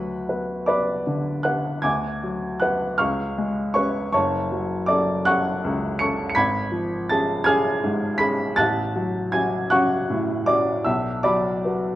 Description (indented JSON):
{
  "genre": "classical, romantic character piece for solo piano",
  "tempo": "53 BPM (dotted quarters)",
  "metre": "6/8",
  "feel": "rubato",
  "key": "F# minor",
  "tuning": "A4 = 440 Hz",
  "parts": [
    { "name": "warm upright piano", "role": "solo", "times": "0.0-12.0 s", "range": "F#1 to C#7", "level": "-20 LUFS", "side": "equal", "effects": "none" }
  ],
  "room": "moderate recital hall reverb, RT60 1.5 s",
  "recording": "worn, warbling old tape, cassette tape, warbly pitch drift",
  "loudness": "-20 LUFS",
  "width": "side -14 dB against mid",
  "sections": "0.0-12.0 A section",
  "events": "none",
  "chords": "0.0 Bm/D; 1.8 G#m7b5/D; 3.0 C#7; 4.1 F#m; 6.4 C#7/G#; 8.6 F#m/A; 10.9 Bm"
}